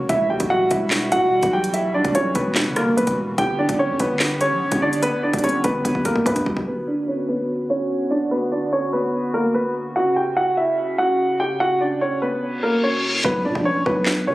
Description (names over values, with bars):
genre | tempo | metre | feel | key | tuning
hip hop, drill | 146 BPM | 4/4 | half-time | B harmonic minor | A4 = 439 Hz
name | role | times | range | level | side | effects
hollow soft pad | sustained chords | 0.0-13.2 s | C#3 to G4 | -29 LUFS | equal | chorus, low-pass filter
growling 808-style bass | bass | 0.0-6.7, 13.2-14.3 s | D1 to F#3 | -26 LUFS | equal | none
dark baby grand piano | melody | 0.1-14.3 s | A#3 to G5 | -20 LUFS | equal | low-pass filter, digital delay
drill drum kit | drums | 0.1-6.7, 13.2-14.2 s | handclaps, hi-hat, kick drum, rim click, snare drum | -24 LUFS | equal | none
reverse cymbal and impact | sound effects | 12.6-14.3 s | none | -25 LUFS | left 1 dB | none
room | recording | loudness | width
light reverb, digital ambience | recorded on a phone in the room, club reverb, compression | -18 LUFS | side -17 dB against mid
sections
0.0-6.7 A section; 6.7-13.2 B section; 13.2-14.3 C section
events
drum fill 5.8-6.7; filter sweep 6.7-13.2; reverse cymbal 12.6-13.2; hi-hats muted 13.2-14.3; impact 13.2-14.3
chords
0.1 Emadd9; 3.4 G; 6.7 Bm; 10.0 F#5; 13.2 Bm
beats
| 0.09 0.51 0.92 1.33 | 1.74 2.15 2.56 2.97 | 3.38 3.79 4.20 4.61 | 5.03 5.44 5.85 6.26 | 6.67 7.08 7.49 7.90 | 8.31 8.72 9.13 9.55 | 9.96 10.37 10.78 11.19 | 11.60 12.01 12.42 12.83 | 13.24 13.65 14.07